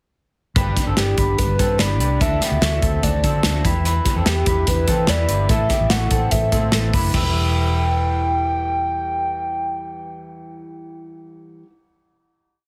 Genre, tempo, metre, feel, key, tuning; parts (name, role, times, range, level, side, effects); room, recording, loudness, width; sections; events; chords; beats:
jangly indie pop; 146 BPM; 4/4; straight; E minor; A4 = 440 Hz
fingerpicked twelve-string acoustic guitar; accompaniment; 0.6-11.7 s; D3 to B4; -31 LUFS; equal; analog chorus, plate reverb
electric guitar through a small old amp; arpeggios; 0.6-8.3 s; A3 to B4; -29 LUFS; equal
vintage muted fingered electric bass; bass; 0.6-11.6 s; E1 to E3; -24 LUFS; equal
modern studio drum kit; drums; 0.6-7.2 s; crash cymbal, hi-hat, kick drum, snare drum; -23 LUFS; equal
hollow clarinet-like synth lead; melody; 1.0-11.2 s; G4 to G5; -26 LUFS; equal; chorus, phaser, plate reverb
light reverb; heavily compressed radio sound, multiband compression; -19 LUFS; mono
0.6-7.1 pre-chorus; 7.1-10.4 final chord
0.6 G; 2.2 Dadd9; 3.6 Em; 5.5 Asus2; 7.1 Em
| 0.56 0.97 1.38 1.80 | 2.21 2.62 3.03 3.44 | 3.85 4.26 4.67 5.08 | 5.50 5.91 6.32 6.73 | 7.14 7.55 7.96 8.38 | 8.79 9.20 9.61 10.03